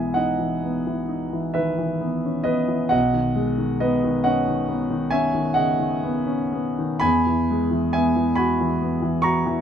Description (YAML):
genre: classical, impressionist solo piano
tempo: 40-46 BPM (dotted quarters)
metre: 9/8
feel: rubato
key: unclear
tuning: A4 = 442 Hz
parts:
  - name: warm concert grand piano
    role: solo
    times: 0.0-9.6 s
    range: B1 to C#6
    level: -20 LUFS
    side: equal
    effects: none
room: light reverb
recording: none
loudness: -20 LUFS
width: side -8 dB against mid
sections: 0.0-9.6 A section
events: none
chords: 0.0 Emaj7/B; 7.0 Eadd9